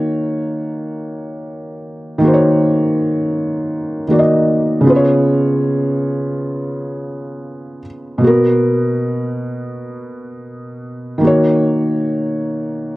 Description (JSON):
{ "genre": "R&B", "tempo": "free time", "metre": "none", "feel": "none", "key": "Eb minor", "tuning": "A4 = 441 Hz", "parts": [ { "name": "felt-muted upright piano", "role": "solo", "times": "0.0-13.0 s", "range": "Cb3 to Eb5", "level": "-15 LUFS", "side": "equal", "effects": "none" } ], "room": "light reverb, small room ambience", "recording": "worn, warbling old tape, cassette tape, warbly pitch drift", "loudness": "-13 LUFS", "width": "side -18 dB against mid", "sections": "0.0-13.0 A section", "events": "none", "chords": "0.0 Ebm7; 4.8 Db7; 8.2 Gbadd11/Cb; 11.2 Ebm7" }